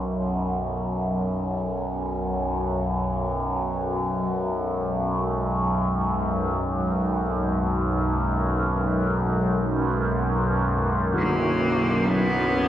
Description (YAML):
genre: dark ambient drone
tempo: free time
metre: none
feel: none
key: unclear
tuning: A4 = 439 Hz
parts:
  - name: dark analog pad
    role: sustained chords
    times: 0.1-12.7 s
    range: G#3 to F#5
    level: -32 LUFS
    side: equal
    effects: chorus
  - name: overtone-sweeping drone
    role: drone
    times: 0.0-12.7 s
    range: B1 to F#2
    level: -23 LUFS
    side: equal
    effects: chorus, built-in reverb, phaser
  - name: tam-tam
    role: percussion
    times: 11.1-11.3 s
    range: none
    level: -27 LUFS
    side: equal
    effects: low-pass filter on cymbals
  - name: rich cello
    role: melody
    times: 11.2-12.7 s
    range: A#3 to B3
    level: -24 LUFS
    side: equal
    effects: none
room: wet huge ambient reverb, RT60 8.7 s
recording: worn, warbling old tape, cassette tape, warbly pitch drift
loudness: -22 LUFS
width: side -11 dB against mid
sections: 0.0-12.7 A section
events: fade-in on analog synth pad 0.0-12.7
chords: 0.0 Bsus2; 3.8 G#m; 11.1 Bsus2